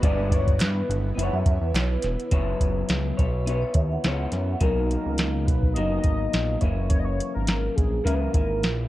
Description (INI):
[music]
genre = indie pop, bedroom pop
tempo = 105 BPM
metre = 4/4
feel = swing 55% on 16ths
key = unclear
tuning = A4 = 441 Hz
[part]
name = warm velvety synth lead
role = melody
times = 0.0-8.9 s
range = G#4 to D#5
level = -30 LUFS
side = left 1 dB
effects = lush chorus
[part]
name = electric guitar through a small old amp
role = accompaniment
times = 0.0-8.9 s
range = F#2 to D5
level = -30 LUFS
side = left 2 dB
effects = wide subtle chorus, vibrato effect
[part]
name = granular cloud pad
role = sustained chords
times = 0.0-2.3 s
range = B3 to E4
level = -38 LUFS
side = right 2 dB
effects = built-in reverb
[part]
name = fat analog bass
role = bass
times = 0.0-8.9 s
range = E1 to G2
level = -26 LUFS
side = equal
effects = none
[part]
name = soft vintage rhythm box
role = drums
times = 0.0-8.8 s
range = hi-hat, kick drum, snare drum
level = -23 LUFS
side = equal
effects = none
[part]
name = group handclap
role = percussion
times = 0.6-1.9 s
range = none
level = -38 LUFS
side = right 4 dB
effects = none
[part]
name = vibraphone with medium mallets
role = second line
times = 1.2-4.6 s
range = B4 to F#5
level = -34 LUFS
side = right 4 dB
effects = ensemble chorus, analog delay
[sound]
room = light reverb, digital ambience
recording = dark, warm production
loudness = -21 LUFS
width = side -15 dB against mid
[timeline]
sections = 0.0-2.3 A section; 2.3-4.6 B section; 4.6-8.9 C section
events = none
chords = 0.0 G6; 1.2 F#7sus4; 4.6 Bmaj7; 6.6 F#7